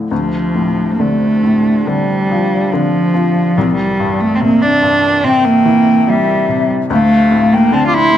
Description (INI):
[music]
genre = celtic folk, Celtic slow air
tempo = 71 BPM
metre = 4/4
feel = rubato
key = D minor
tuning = A4 = 436 Hz
[part]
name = felt-muted upright piano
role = accompaniment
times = 0.0-8.2 s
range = C2 to G3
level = -17 LUFS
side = left 3 dB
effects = none
[part]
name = warm woodwind section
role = sustained chords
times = 0.0-8.2 s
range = Bb2 to D4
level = -24 LUFS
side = left 2 dB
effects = none
[part]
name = dark cello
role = melody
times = 0.1-8.2 s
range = F3 to F4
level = -12 LUFS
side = right 2 dB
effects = none
[part]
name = wooden flute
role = second line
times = 5.2-8.2 s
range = E5 to D6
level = -16 LUFS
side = left 6 dB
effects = none
[sound]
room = wet recital hall reverb, RT60 1.4 s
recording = dark, warm production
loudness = -10 LUFS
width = side -10 dB against mid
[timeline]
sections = 0.1-8.2 A section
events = none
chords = 0.1 Dm7; 3.6 C7; 6.9 Dm7